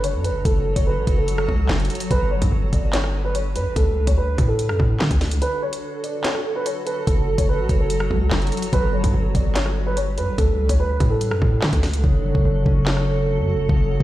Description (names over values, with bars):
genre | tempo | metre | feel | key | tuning
hip hop, drill | 145 BPM | 4/4 | half-time | F# phrygian | A4 = 440 Hz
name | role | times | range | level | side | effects
dark concert grand piano | melody | 0.0-12.0 s | A4 to D5 | -26 LUFS | equal | low-pass filter, tape echo
concert harp | accompaniment | 0.0-1.7, 12.0-14.0 s | C#3 to C#5 | -23 LUFS | left 2 dB | low-pass filter
granular cloud pad | sustained chords | 0.0-14.0 s | D3 to C#5 | -28 LUFS | right 1 dB | built-in reverb
hard-hitting 808-style bass | bass | 0.0-14.0 s | F#1 to D3 | -22 LUFS | equal | none
drill drum kit | drums | 0.0-14.0 s | handclaps, hi-hat, kick drum, rim click, snare drum | -22 LUFS | equal | none
room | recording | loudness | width
little or no reverb | played on a big sound system in a bare room, stone room reverb | -18 LUFS | side -15 dB against mid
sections
0.0-14.0 A section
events
break 5.4-6.2; hi-hats muted 12.0-14.0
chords
0.0 F#m; 2.1 G; 3.8 D; 5.4 F#m; 8.7 G; 10.4 D; 12.0 F#m